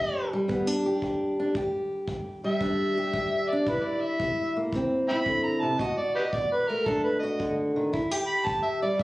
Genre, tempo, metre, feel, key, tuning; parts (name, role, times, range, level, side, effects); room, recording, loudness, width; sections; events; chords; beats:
acoustic country blues, solo or duo; 113 BPM; 4/4; swing 68% on 8ths; E minor; A4 = 439 Hz
overdriven harmonica; melody; 0.0-9.0 s; G4 to B5; -27 LUFS; equal
fingerpicked old ladder-braced acoustic guitar; accompaniment; 0.0-9.0 s; E2 to G4; -27 LUFS; equal
kick drum; drums; 0.5-9.0 s; -38 LUFS; right 1 dB
moderate small room reverb, RT60 0.5 s; recorded on a phone in the room, club reverb; -25 LUFS; side -18 dB against mid
0.0-9.0 A section
harmonica solo 0.0-9.0
0.0 Em7; 3.7 C7; 5.8 B7#9; 7.9 Em
0.48 1.02 | 1.55 2.08 2.61 3.14 | 3.67 4.20 4.73 5.27 | 5.80 6.33 6.86 7.39 | 7.92 8.46 8.99